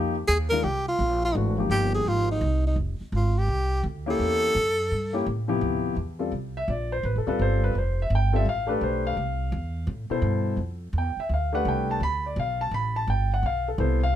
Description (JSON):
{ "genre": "modal jazz", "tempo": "169 BPM", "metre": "4/4", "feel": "swing 65% on 8ths", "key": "D dorian from 5.6 s", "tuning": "A4 = 440 Hz", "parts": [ { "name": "warm concert grand piano", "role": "accompaniment", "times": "0.0-14.2 s", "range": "B2 to B5", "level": "-27 LUFS", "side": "left 2 dB", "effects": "none" }, { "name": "upright bass", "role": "bass", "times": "0.0-14.1 s", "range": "D1 to A2", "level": "-26 LUFS", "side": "right 1 dB", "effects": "none" }, { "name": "breathy tenor saxophone", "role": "melody", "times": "0.3-5.2 s", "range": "Eb4 to Bb4", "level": "-25 LUFS", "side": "equal", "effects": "none" } ], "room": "little or no reverb", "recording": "close, detailed microphones", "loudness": "-23 LUFS", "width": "side -11 dB against mid", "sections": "0.0-5.6 A section; 5.6-14.2 B section", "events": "none", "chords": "0.0 Fm11; 4.2 A7b9; 5.6 Dm11", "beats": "0.29 0.64 1.00 | 1.35 1.71 2.06 2.42 | 2.77 3.13 3.48 3.84 | 4.19 4.55 4.90 5.26 | 5.61 5.97 6.32 6.68 | 7.03 7.39 7.75 8.10 | 8.46 8.81 9.17 9.52 | 9.88 10.23 10.59 10.94 | 11.30 11.65 12.01 12.36 | 12.72 13.07 13.43 13.78 | 14.14" }